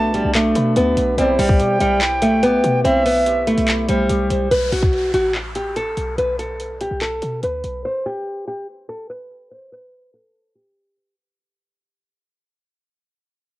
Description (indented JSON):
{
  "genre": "hip hop, trap",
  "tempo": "144 BPM",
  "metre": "4/4",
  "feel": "half-time",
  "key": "unclear",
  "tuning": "A4 = 445 Hz",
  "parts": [
    { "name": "nylon-string guitar", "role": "melody", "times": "0.0-11.1 s", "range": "G3 to C5", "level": "-18 LUFS", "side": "equal", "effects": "low-pass filter, cassette tape" },
    { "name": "breathy bright concert flute", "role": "second line", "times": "0.0-3.6 s", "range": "E5 to A5", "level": "-22 LUFS", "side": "right 2 dB", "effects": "cassette tape, analog delay" },
    { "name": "electric guitar through a small old amp", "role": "accompaniment", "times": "0.0-4.5 s", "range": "D4 to E5", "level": "-26 LUFS", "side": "right 1 dB", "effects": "low-pass filter, cassette tape" },
    { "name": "short 808-style bass", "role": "bass", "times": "0.0-7.8 s", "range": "A1 to B2", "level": "-25 LUFS", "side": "equal", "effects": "none" },
    { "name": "trap drum kit", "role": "drums", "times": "0.1-7.7 s", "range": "handclaps, hi-hat, kick drum", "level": "-22 LUFS", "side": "equal", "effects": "cassette tape" },
    { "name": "warm brass ensemble", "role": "stabs", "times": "1.2-1.5 s", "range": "E2 to G3", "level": "-24 LUFS", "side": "right 1 dB", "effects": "cassette tape" },
    { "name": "downlifter", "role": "sound effects", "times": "4.5-7.8 s", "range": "none", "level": "-34 LUFS", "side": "left 1 dB", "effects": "none" }
  ],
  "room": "small room ambience",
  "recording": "home recording on cassette",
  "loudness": "-16 LUFS",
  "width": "side -17 dB against mid",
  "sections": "0.0-4.5 A section; 4.5-11.2 B section",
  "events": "fade-out 4.5-11.2; filter sweep on nylon-string guitar 4.5-11.2",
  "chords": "0.0 Bm; 1.2 C/B; 4.5 N.C."
}